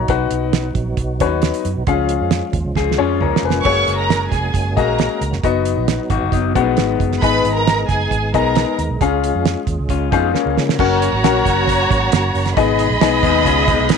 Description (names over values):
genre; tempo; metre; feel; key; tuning
uptempo 1960s-style soul; 135 BPM; 4/4; straight; F# major; A4 = 445 Hz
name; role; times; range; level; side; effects
clear concert grand piano; accompaniment; 0.0-13.6 s; A#3 to A#5; -18 LUFS; left 12 dB; none
percussive tonewheel organ; sustained chords; 0.0-14.0 s; B2 to G#4; -26 LUFS; right 2 dB; fast rotary speaker, chorus vibrato
vintage muted fingered electric bass; bass; 0.0-13.9 s; E#1 to C#3; -21 LUFS; right 2 dB; none
cloth-damped thuddy drum kit; drums; 0.1-14.0 s; crash cymbal, hi-hat, kick drum, snare drum, toms; -20 LUFS; right 6 dB; none
electric guitar through a small old amp; riff; 2.8-7.2, 9.9-14.0 s; G#3 to G#4; -21 LUFS; left 14 dB; none
warm symphonic violin section; second line; 3.6-14.0 s; F#4 to C#6; -18 LUFS; right 1 dB; none
room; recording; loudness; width
light reverb, studio ambience; 1960s-style stereo with parts hard left and right; -14 LUFS; side -6 dB against mid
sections
0.0-10.8 A section; 10.8-14.0 B section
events
drum fill 2.8-3.7, 10.3-10.8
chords
0.1 B; 1.9 C#; 3.7 F#add9; 5.4 B/F#; 7.2 G#m; 9.0 C#; 10.8 F#; 12.6 G#m